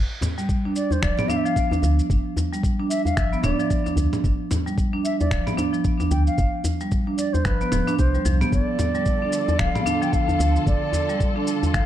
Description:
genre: organic downtempo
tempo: 112 BPM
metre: 4/4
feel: swing 59% on 16ths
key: G mixolydian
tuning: A4 = 439 Hz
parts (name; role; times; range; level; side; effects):
- woody FM bass; bass; 0.0-11.9 s; D1 to D2; -22 LUFS; equal; sidechain pumping
- dusty soul sampler-style drum kit; drums; 0.2-11.9 s; finger snaps, shaker, toms; -31 LUFS; right 1 dB; none
- djembe; percussion; 0.2-11.7 s; none; -27 LUFS; left 1 dB; none
- marimba with hard mallets; arpeggios; 0.4-11.9 s; F3 to D4; -25 LUFS; right 2 dB; digital delay
- electronic kick drum; drums; 0.5-11.9 s; none; -24 LUFS; equal; none
- bright bansuri; melody; 0.8-11.9 s; B4 to G5; -27 LUFS; equal; digital delay
- warm studio string section; sustained chords; 8.5-11.9 s; D3 to A4; -31 LUFS; left 1 dB; sidechain pumping
room: light reverb, small room ambience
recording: dark, warm production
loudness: -20 LUFS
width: side -11 dB against mid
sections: 0.0-11.9 A section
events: none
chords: 0.0 G7(no3); 8.5 Dm

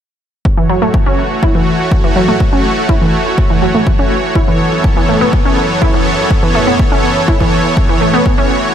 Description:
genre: progressive house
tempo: 123 BPM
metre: 4/4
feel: straight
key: F# minor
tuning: A4 = 440 Hz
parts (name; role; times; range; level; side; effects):
- supersaw pad; sustained chords; 0.5-8.7 s; F#2 to C#5; -14 LUFS; right 1 dB; sidechain pumping
- electronic hi-hat; drums; 0.5-8.7 s; none; barely audible; none; none
- electronic kick drum; drums; 0.5-8.4 s; none; -14 LUFS; equal; studio reverb
- wide unison pluck; arpeggios; 0.6-8.4 s; E3 to E4; -15 LUFS; equal; sidechain pumping, tape echo
room: light reverb, digital ambience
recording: none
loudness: -10 LUFS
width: side -9 dB against mid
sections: 0.5-8.7 A section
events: filter sweep on synth pluck 0.5-8.7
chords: 0.5 F#m7; 4.4 Aadd9

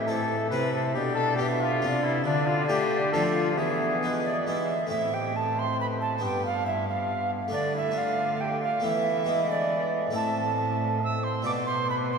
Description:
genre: classical, renaissance-style consort dance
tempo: 138 BPM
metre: 3/4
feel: straight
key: A minor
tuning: A4 = 440 Hz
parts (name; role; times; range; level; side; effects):
- alto recorder; second line; 0.0-12.2 s; B4 to E6; -29 LUFS; right 3 dB; none
- dark trombone; accompaniment; 0.0-12.2 s; G#3 to F4; -34 LUFS; left 2 dB; none
- harpsichord; accompaniment; 0.0-12.2 s; G2 to F4; -32 LUFS; left 1 dB; none
- rich cello; bass; 0.0-12.2 s; G2 to F3; -32 LUFS; right 1 dB; none
- mellow cornet; melody; 0.1-12.2 s; D4 to E5; -31 LUFS; left 3 dB; none
room: wet cathedral reverb, RT60 5.4 s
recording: minimal, uncompressed stereo recording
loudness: -24 LUFS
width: side -5 dB against mid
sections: 0.0-4.9 A section; 4.9-12.2 B section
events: none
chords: 0.0 Am; 1.0 Am11/B (rootless); 2.3 Dm; 3.6 E; 4.9 Am; 6.2 G; 7.5 Dm; 8.8 Esus4; 9.3 E; 10.1 Am; 11.4 Bdim

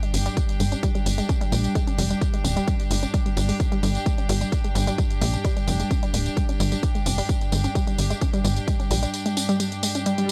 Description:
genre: driving peak-time techno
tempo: 130 BPM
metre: 4/4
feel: straight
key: unclear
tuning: A4 = 441 Hz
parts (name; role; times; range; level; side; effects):
- unison pluck; riff; 0.0-10.2 s; G3 to C#4; -32 LUFS; equal; tube saturation, sidechain pumping, analog delay
- deep dark ambient pad; drone; 0.1-10.3 s; G2 to G3; -35 LUFS; equal; none
- electronic hi-hat and tambourine; drums; 0.0-10.3 s; none; -34 LUFS; equal; sidechain pumping on hats, sidechain pumping on cymbals, sidechain pumping on perc
- bright chamber string section; texture; 0.0-10.3 s; D4 to G5; -35 LUFS; equal; sidechain pumping
- tight sequencer bass; bass; 0.1-9.1 s; D1 to Bb1; -26 LUFS; equal; sidechain pumping
- electronic kick drum; drums; 0.4-8.8 s; none; -27 LUFS; equal; none
- swell; sound effects; 10.2-10.3 s; none; -31 LUFS; equal; none
room: digital ambience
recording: dry, gritty hardware recording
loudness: -23 LUFS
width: mono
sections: 0.0-10.3 A section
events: swell 10.2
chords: 0.0 G5

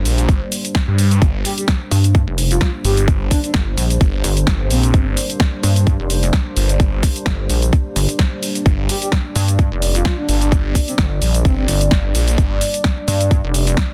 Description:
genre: bass house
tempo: 129 BPM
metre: 4/4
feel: swing 55% on 16ths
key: G minor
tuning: A4 = 441 Hz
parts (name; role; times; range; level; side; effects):
- dark analog pad; sustained chords; 0.0-13.9 s; G3 to D5; -28 LUFS; equal; chorus, phaser, sidechain pumping
- phased detuned saw bass; bass; 0.0-12.6 s; G1 to G2; -20 LUFS; equal; phaser, sidechain pumping
- house drum kit; drums; 0.1-13.9 s; hi-hat, shaker, snare drum; -24 LUFS; equal; none
- electronic kick drum; drums; 0.3-13.9 s; none; -18 LUFS; equal; none
- breathy flute-like synth lead; melody; 1.4-5.1, 8.9-11.6 s; C4 to G4; -27 LUFS; equal; lush chorus, digital delay
- pulsing pluck wobble bass; bass; 1.9-13.8 s; F1 to G2; -18 LUFS; equal; chorus, tube saturation, sidechain pumping
room: digital ambience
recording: dense, heavily limited modern master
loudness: -17 LUFS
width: mono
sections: 0.0-13.9 A section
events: none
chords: 0.0 Gm

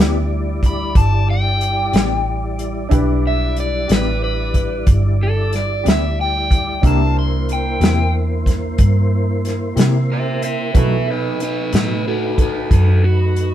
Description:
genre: slow blues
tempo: 61 BPM (dotted quarters)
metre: 12/8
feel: straight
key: E minor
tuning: A4 = 440 Hz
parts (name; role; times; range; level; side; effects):
- clear upright piano; accompaniment; 0.0-13.5 s; B3 to B4; -28 LUFS; equal; none
- mellow electric guitar; accompaniment; 0.0-11.9 s; B2 to G4; -24 LUFS; left 4 dB; tremolo
- tonewheel organ; sustained chords; 0.0-13.5 s; G3 to D5; -26 LUFS; equal; slow rotary speaker, chorus vibrato
- vintage muted fingered electric bass; bass; 0.0-13.5 s; G1 to C3; -18 LUFS; equal; none
- warm soul drum kit; drums; 0.0-13.5 s; hi-hat, kick drum, snare drum; -16 LUFS; equal; none
- overdriven electric guitar; melody; 0.7-13.5 s; D#4 to C6; -22 LUFS; equal; phaser
room: light reverb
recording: band playing live in one room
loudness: -15 LUFS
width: side -11 dB against mid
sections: 0.0-13.5 A section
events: none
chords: 0.0 Em7; 6.8 C7; 10.8 B7

